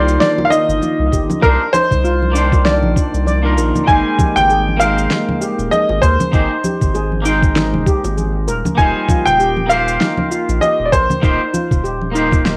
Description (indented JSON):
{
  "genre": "sunset chillout",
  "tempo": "98 BPM",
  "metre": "4/4",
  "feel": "swing 57% on 16ths",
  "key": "unclear",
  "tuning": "A4 = 440 Hz",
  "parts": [
    { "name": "bright baby grand piano", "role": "melody", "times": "0.0-12.1 s", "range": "Bb4 to Ab5", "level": "-19 LUFS", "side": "equal", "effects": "cassette tape, analog delay" },
    { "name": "twangy electric guitar", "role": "accompaniment", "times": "0.0-12.6 s", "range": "Eb3 to G5", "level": "-23 LUFS", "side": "equal", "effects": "cassette tape, tape echo" },
    { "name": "steel pan", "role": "arpeggios", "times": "0.0-12.6 s", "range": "D4 to D5", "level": "-25 LUFS", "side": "equal", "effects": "cassette tape, tape echo" },
    { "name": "round analog bass", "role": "bass", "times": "0.0-12.6 s", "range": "Eb1 to Eb2", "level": "-21 LUFS", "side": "equal", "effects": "none" },
    { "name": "electronic cabasa and snare drum", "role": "drums", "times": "0.1-12.6 s", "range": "none", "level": "-25 LUFS", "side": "equal", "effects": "overdrive, cassette tape" },
    { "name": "congas and bongos", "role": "percussion", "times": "0.4-12.4 s", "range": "none", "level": "-26 LUFS", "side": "equal", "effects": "none" },
    { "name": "electronic kick drum", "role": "drums", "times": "1.1-12.4 s", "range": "none", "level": "-18 LUFS", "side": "equal", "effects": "cassette tape" }
  ],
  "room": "moderate studio reverb, RT60 0.6 s",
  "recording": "home recording on cassette",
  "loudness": "-15 LUFS",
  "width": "mono",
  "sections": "0.0-12.6 A section",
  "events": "none",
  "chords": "0.0 Cm11; 3.9 Abmaj9; 8.8 Eb69",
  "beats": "0.21 0.82 | 1.44 2.05 2.66 3.27 | 3.88 4.50 5.11 5.72 | 6.33 6.95 7.56 8.17 | 8.78 9.39 10.01 10.62 | 11.23 11.84 12.46"
}